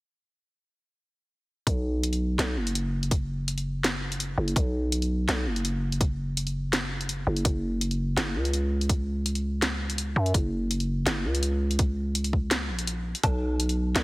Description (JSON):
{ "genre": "half-time drum and bass", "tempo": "166 BPM", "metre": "4/4", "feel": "half-time", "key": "unclear", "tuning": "A4 = 440 Hz", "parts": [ { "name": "growling 808-style bass", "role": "bass", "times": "1.7-14.0 s", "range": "F#1 to F#2", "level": "-27 LUFS", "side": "equal", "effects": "none" }, { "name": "drum and bass drum kit", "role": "drums", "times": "1.7-14.0 s", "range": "hi-hat, snare drum, woodblock", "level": "-29 LUFS", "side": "equal", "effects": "none" }, { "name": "electronic kick drum", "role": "drums", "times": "1.7-13.3 s", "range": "none", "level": "-25 LUFS", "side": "equal", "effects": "none" } ], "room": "little or no reverb", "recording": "heavily compressed radio sound", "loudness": "-25 LUFS", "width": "side -21 dB against mid", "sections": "1.7-14.0 A section", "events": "kick drops out 12.9-13.2", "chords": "none" }